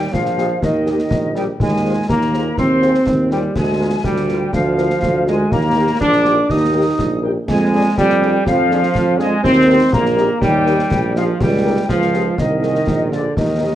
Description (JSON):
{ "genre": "military-style march for wind band", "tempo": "122 BPM", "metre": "2/4", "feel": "straight", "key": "Eb major", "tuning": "A4 = 441 Hz", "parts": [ { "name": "small flute group", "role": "second line", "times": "0.0-13.8 s", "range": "D5 to Eb6", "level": "-22 LUFS", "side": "left 2 dB", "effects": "none" }, { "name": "bright trombone section", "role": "sustained chords", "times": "0.0-13.8 s", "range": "D3 to Eb4", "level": "-17 LUFS", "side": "right 1 dB", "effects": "none" }, { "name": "clear tuba", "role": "bass", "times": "0.0-13.8 s", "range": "Bb1 to F2", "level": "-19 LUFS", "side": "right 2 dB", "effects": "none" }, { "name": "concert snare drum, concert bass drum and clash cymbals", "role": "drums", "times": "0.1-13.8 s", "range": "none", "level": "-23 LUFS", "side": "left 1 dB", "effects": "none" }, { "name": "warm trumpet section", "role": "melody", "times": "0.4-13.7 s", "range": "D5 to Ab5", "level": "-41 LUFS", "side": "equal", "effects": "none" }, { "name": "mellow French horn section", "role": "accompaniment", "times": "0.4-13.7 s", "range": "D4 to C5", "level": "-24 LUFS", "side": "left 4 dB", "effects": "none" } ], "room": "moderate large studio reverb, RT60 0.8 s", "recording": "worn, warbling old tape, cassette tape, warbly pitch drift", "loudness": "-13 LUFS", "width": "side -12 dB against mid", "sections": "0.0-13.8 A section", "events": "none", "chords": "0.0 Eb; 1.6 Fm7/Eb; 3.6 Bb7/D; 5.5 Eb; 7.5 Ddim/F; 9.4 Eb; 11.4 Eb7/Db; 12.4 Ab/C; 12.9 Bb7" }